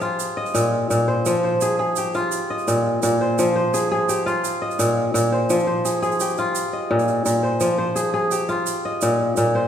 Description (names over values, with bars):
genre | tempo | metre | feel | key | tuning
west african traditional, West African string and xylophone music | 113 BPM (dotted quarters) | 12/8 | straight | unclear | A4 = 439 Hz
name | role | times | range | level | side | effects
kora | arpeggios | 0.0-9.7 s | Bb2 to Eb5 | -19 LUFS | equal | none
tube shaker | percussion | 0.0-9.4 s | none | -31 LUFS | right 8 dB | none
room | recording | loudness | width
wet recital hall reverb, RT60 1.8 s | heard from further back in the room | -18 LUFS | side -9 dB against mid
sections
0.0-9.7 A section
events
none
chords
0.2 Bbsus24; 1.3 Fm; 2.3 Bbsus24; 3.4 Fm; 4.4 Bbsus24; 5.5 Fm; 6.6 Bbsus24; 7.6 Fm; 8.7 Bbsus24